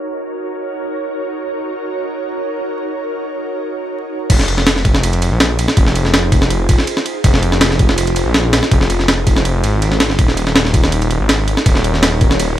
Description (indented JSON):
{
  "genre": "drum and bass, jungle",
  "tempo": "163 BPM",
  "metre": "4/4",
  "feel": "straight",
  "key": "F phrygian",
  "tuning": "A4 = 440 Hz",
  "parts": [
    { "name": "ethereal airy pad", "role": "sustained chords", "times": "0.0-12.6 s", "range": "Eb4 to Db5", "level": "-22 LUFS", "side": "right 1 dB", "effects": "ensemble chorus, built-in reverb, vintage 12-bit sampler grit" },
    { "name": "detuned saw bass", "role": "bass", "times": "4.3-12.6 s", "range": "Eb1 to Bb1", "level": "-16 LUFS", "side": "equal", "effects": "tube saturation" },
    { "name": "breakbeat sampler-style drum kit", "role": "drums", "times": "4.3-12.5 s", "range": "crash cymbal, kick drum, ride cymbal, snare drum", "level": "-13 LUFS", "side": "equal", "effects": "none" }
  ],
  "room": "digital ambience",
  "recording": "vinyl crackle, low-pass filter",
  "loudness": "-13 LUFS",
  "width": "side -12 dB against mid",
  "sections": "0.0-4.3 A section; 4.3-12.6 B section",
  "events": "filter sweep 0.0-4.3; drop 4.3-12.6",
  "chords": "0.0 Ebm7; 4.3 Fm7; 10.2 Ebm7",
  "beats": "0.25 0.62 0.99 | 1.35 1.72 2.09 2.46 | 2.83 3.20 3.56 3.93 | 4.30 4.67 5.04 5.40 | 5.77 6.14 6.51 6.88 | 7.25 7.61 7.98 8.35 | 8.72 9.09 9.45 9.82 | 10.19 10.56 10.93 11.29 | 11.66 12.03 12.40"
}